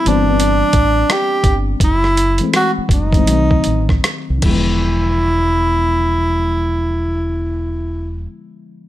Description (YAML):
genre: R&B, neo-soul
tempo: 75-87 BPM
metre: 4/4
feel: swing 64% on 16ths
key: unclear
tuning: A4 = 440 Hz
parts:
  - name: breathy tenor saxophone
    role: melody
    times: 0.0-8.3 s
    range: D4 to G4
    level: -17 LUFS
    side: right 1 dB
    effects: plate reverb
  - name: mellow FM electric piano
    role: accompaniment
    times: 0.0-8.9 s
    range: D3 to D4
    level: -22 LUFS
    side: left 4 dB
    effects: chorus, plate reverb
  - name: deep dub fingered electric bass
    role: bass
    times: 0.1-8.3 s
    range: E1 to C2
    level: -18 LUFS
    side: equal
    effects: none
  - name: boom bap sampler-style drum kit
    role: drums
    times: 0.1-4.7 s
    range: crash cymbal, hi-hat, kick drum, rim click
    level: -17 LUFS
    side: equal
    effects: overdrive
room: light reverb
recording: none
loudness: -13 LUFS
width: side -14 dB against mid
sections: 0.0-4.8 A section; 4.8-8.0 B section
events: slowing down 0.0-4.8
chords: 0.0 Am7; 1.8 F#m7b5; 3.3 B7b9; 4.4 E7b9